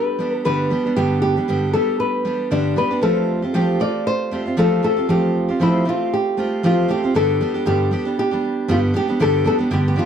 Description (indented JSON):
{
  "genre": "pop",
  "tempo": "117 BPM",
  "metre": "4/4",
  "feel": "swing 55% on 16ths",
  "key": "G mixolydian",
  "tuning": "A4 = 438 Hz",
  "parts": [
    { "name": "nylon-string guitar", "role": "melody", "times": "0.0-10.1 s", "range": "D4 to D5", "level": "-20 LUFS", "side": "left 1 dB", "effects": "none" },
    { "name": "picked steel-string acoustic guitar", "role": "accompaniment", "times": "0.0-10.1 s", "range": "G2 to G4", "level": "-19 LUFS", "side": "right 1 dB", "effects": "none" }
  ],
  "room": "moderate studio ambience, RT60 0.5 s",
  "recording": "dark, warm production",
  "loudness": "-17 LUFS",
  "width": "side -8 dB against mid",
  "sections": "0.0-7.1 A section; 7.1-10.1 B section",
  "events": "none",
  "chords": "0.0 G; 3.0 Fadd9; 7.1 G"
}